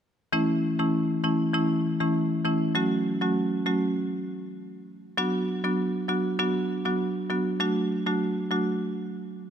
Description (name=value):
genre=dancehall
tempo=99 BPM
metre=4/4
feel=straight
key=unclear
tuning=A4 = 440 Hz
part: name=marimba with hard mallets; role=accompaniment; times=0.3-8.7 s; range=E3 to F#4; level=-24 LUFS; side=equal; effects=none
room=moderate lush hall reverb, RT60 2.7 s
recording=none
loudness=-24 LUFS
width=side -8 dB against mid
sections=0.3-9.5 A section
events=none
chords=0.3 A; 2.8 F#m; 5.2 Bm; 7.6 D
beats=| 0.33 0.94 1.54 2.15 | 2.75 3.36 3.97 4.57 | 5.18 5.79 6.39 7.00 | 7.60 8.21